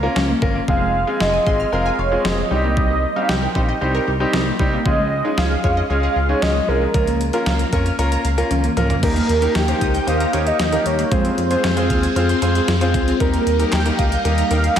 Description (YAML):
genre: synth-pop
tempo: 115 BPM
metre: 4/4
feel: straight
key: unclear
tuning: A4 = 440 Hz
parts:
  - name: warm velvety synth lead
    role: melody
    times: 0.0-14.8 s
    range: Bb4 to G5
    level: -22 LUFS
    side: right 2 dB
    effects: chorus, analog delay
  - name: clear grand piano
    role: accompaniment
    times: 0.0-14.8 s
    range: G3 to Db5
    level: -22 LUFS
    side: left 1 dB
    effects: none
  - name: wide unison pluck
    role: arpeggios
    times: 0.0-14.8 s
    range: F3 to Ab6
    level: -26 LUFS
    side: right 1 dB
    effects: lush chorus, analog delay
  - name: smooth synth bass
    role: bass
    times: 0.0-14.8 s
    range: F1 to F2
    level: -21 LUFS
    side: equal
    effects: none
  - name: clean 12-bit digital drum machine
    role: drums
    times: 0.2-14.8 s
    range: crash cymbal, handclaps, hi-hat, kick drum, snare drum, toms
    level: -23 LUFS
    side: equal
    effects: overdrive
  - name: phased string machine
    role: sustained chords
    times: 9.0-14.8 s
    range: G3 to G4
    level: -24 LUFS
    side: left 1 dB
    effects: ensemble chorus, phaser
room: wet lush hall reverb, RT60 2.0 s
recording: dreamy mix soaked in reverb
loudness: -16 LUFS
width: side -9 dB against mid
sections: 0.0-9.0 A section; 9.0-14.8 B section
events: drum fill 8.5-9.0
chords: 0.0 Bbm/Db; 0.7 Fm; 2.5 Cm7; 4.9 Dbadd9; 6.9 Bbm/Db; 9.0 Eb; 11.1 Fm; 13.2 Eb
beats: 0.16 | 0.68 1.20 1.73 2.25 | 2.77 3.29 3.81 4.33 | 4.86 5.38 5.90 6.42 | 6.94 7.46 7.99 8.51 | 9.03 9.55 10.07 10.60 | 11.12 11.64 12.16 12.68 | 13.20 13.73 14.25 14.77